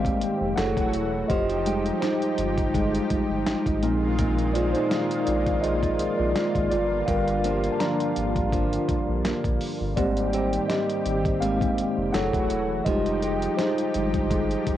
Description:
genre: contemporary R&B.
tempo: 83 BPM.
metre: 4/4.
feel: swing 54% on 16ths.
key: F dorian.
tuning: A4 = 442 Hz.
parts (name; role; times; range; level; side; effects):
mellow tine electric piano; accompaniment; 0.0-14.8 s; F3 to Bb5; -25 LUFS; left 1 dB; medium stereo tremolo, cassette tape.
lush unison pad; sustained chords; 0.0-14.8 s; D3 to G4; -30 LUFS; equal; chorus, cassette tape.
nylon-string guitar; arpeggios; 0.0-14.8 s; G2 to G4; -32 LUFS; right 4 dB; cassette tape.
round analog bass; bass; 0.0-14.7 s; Fb1 to Bb1; -30 LUFS; equal; none.
dusty soul sampler-style drum kit; drums; 0.0-14.8 s; hi-hat, kick drum, snare drum; -29 LUFS; equal; cassette tape.
room: light reverb.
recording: home recording on cassette.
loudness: -22 LUFS.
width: side -12 dB against mid.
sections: 0.0-14.8 A section.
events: tine electric piano solo 0.0-14.8.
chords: 0.0 Abmaj7; 0.6 Gbm9; 1.3 Fm9; 3.8 Bb7sus4; 6.7 Gm7; 10.0 Abmaj7; 12.1 Gbm9; 12.9 Fm9.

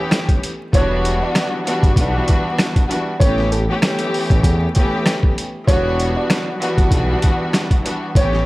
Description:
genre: hip hop, boom-bap hip-hop.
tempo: 97 BPM.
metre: 4/4.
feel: swing 55% on 16ths.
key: E dorian.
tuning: A4 = 441 Hz.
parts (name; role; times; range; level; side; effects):
warm studio string section; accompaniment; 0.0-8.5 s; E3 to G4; -20 LUFS; left 1 dB; cassette tape, high-pass filter, low-pass filter.
boom bap sampler-style drum kit; drums; 0.1-8.4 s; hi-hat, kick drum, rim click, snare drum; -16 LUFS; equal; none.
dark upright piano; melody; 0.7-8.4 s; A4 to D5; -24 LUFS; right 1 dB; high-pass filter, low-pass filter, tape echo.
smooth synth bass; bass; 0.7-8.5 s; E1 to E2; -20 LUFS; equal; none.
room: digital ambience.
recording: dry, gritty hardware recording, vinyl crackle.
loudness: -15 LUFS.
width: side -20 dB against mid.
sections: 0.0-8.5 A section.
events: none.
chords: 0.0 A7; 0.7 Em7; 3.2 A7; 5.7 Em7.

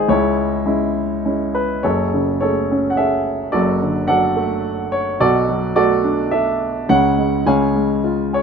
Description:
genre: classical, lyrical solo piano.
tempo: 105 BPM.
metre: 3/4.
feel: rubato.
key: F# minor.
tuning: A4 = 440 Hz.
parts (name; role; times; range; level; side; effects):
warm baby grand piano; solo; 0.0-8.4 s; F#1 to G#5; -15 LUFS; equal; none.
room: light reverb.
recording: minimal, uncompressed stereo recording.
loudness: -15 LUFS.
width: side -6 dB against mid.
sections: 0.0-1.8 A section; 1.8-8.4 B section.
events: none.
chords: 0.1 C#m; 1.8 F#madd9; 3.5 D/F#; 5.2 Bm7; 6.9 C#sus4; 7.5 C#.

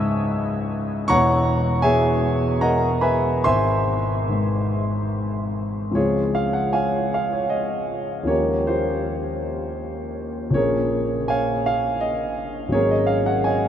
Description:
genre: classical, impressionist solo piano.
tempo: 70-86 BPM.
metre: 3/4.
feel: rubato.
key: Db major.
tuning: A4 = 440 Hz.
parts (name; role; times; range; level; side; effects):
warm concert grand piano; solo; 0.0-13.7 s; E1 to E6; -19 LUFS; equal; none.
room: wet huge ambient reverb, RT60 8.6 s.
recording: in a vast, echoing space.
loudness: -19 LUFS.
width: side -9 dB against mid.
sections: 0.0-6.0 A section; 6.0-13.7 B section.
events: none.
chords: 0.0 C#m9; 1.1 E69; 3.4 Abaug; 6.0 Dbmaj7; 8.3 Eb13; 10.6 Bbm7.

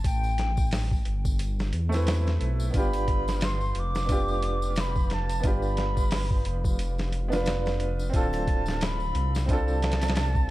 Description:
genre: trip hop.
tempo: 89 BPM.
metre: 4/4.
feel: swing 58% on 16ths.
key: unclear.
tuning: A4 = 442 Hz.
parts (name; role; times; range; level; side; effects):
concert flute; melody; 0.0-10.5 s; G5 to D6; -33 LUFS; equal; tape echo.
dark detuned saw bass; bass; 0.0-10.5 s; D1 to E2; -27 LUFS; equal; none.
boom bap sampler-style drum kit; drums; 0.0-10.5 s; hi-hat, kick drum, snare drum; -28 LUFS; equal; studio reverb.
tambourine and triangle; percussion; 0.0-10.5 s; none; -47 LUFS; left 4 dB; none.
clear upright piano; accompaniment; 1.9-10.5 s; A3 to B4; -31 LUFS; right 2 dB; tremolo, low-pass filter, tape echo.
room: studio reverb.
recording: dark, warm production.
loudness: -24 LUFS.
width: side -17 dB against mid.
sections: 0.0-10.5 A section.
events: none.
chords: 0.0 Am7; 2.7 G7; 8.1 Dm7.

